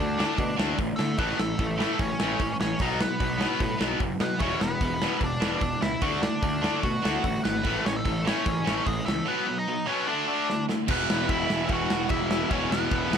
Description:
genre	punk rock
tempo	149 BPM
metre	4/4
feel	straight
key	unclear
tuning	A4 = 440 Hz
part	nasal lead guitar with a parked wah	melody	0.0-13.2 s	G#3 to F#5	-30 LUFS	equal	overdrive
part	distorted electric guitar	riff	0.0-13.2 s	E2 to D4	-32 LUFS	left 14 dB	distortion
part	tight distorted guitar	riff	0.0-13.2 s	E2 to D4	-31 LUFS	right 12 dB	distortion
part	fuzz picked electric bass	bass	0.0-13.2 s	E1 to D3	-32 LUFS	equal	overdrive
part	big rock drum kit	drums	0.2-13.2 s	crash cymbal, hi-hat, kick drum, snare drum	-29 LUFS	equal	none
part	biting overdriven guitar	riff	10.9-13.2 s	E2 to E3	-33 LUFS	equal	none
room	light reverb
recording	none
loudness	-24 LUFS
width	side -7 dB against mid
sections	0.0-10.9 A section; 10.9-13.2 B section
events	drum fill 10.5-10.9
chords	0.0 D5; 1.2 A; 2.8 B; 4.4 E5; 6.0 D; 7.6 A; 9.3 B; 10.1 D5; 10.9 E5

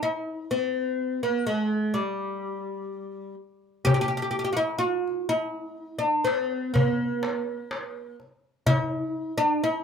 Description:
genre	Arabic maqam ensemble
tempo	124 BPM (eighths)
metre	10/8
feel	straight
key	G maqam huzam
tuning	A4 = 440 Hz
part	oud	melody	0.0-9.8 s	G3 to G4	-26 LUFS	equal	none
part	darbuka	percussion	3.9-8.9 s	none	-26 LUFS	left 2 dB	none
room	wet small room reverb, RT60 0.5 s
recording	none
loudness	-24 LUFS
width	side -7 dB against mid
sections	0.0-3.9 A section; 3.9-9.8 B section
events	break 0.0-3.9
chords	none

